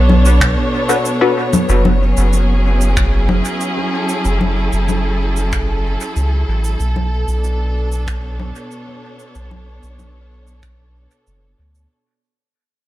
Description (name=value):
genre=ambient dub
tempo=94 BPM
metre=4/4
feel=straight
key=F# minor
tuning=A4 = 435 Hz
part: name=warm studio string section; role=sustained chords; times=0.0-11.9 s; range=B2 to C#5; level=-20 LUFS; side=right 1 dB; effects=none
part: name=soft dub sub bass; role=bass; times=0.0-11.9 s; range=F#1 to D2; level=-15 LUFS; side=equal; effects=none
part: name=electronic congas, shaker and finger snaps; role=drums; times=0.1-11.9 s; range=none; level=-20 LUFS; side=left 1 dB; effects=dub echo
part: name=electronic kick drum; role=drums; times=0.4-10.8 s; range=none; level=-22 LUFS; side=equal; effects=none
part: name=filtered dub chord stab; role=stabs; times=0.9-1.4 s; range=D4 to B4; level=-19 LUFS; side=left 3 dB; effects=analog chorus, dub echo
room=light reverb, digital ambience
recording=none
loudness=-14 LUFS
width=side -15 dB against mid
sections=0.0-1.7 A section; 1.7-11.9 B section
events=fade-out 1.7-11.9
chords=0.0 Bm7; 1.7 F#m7; 6.8 Bm7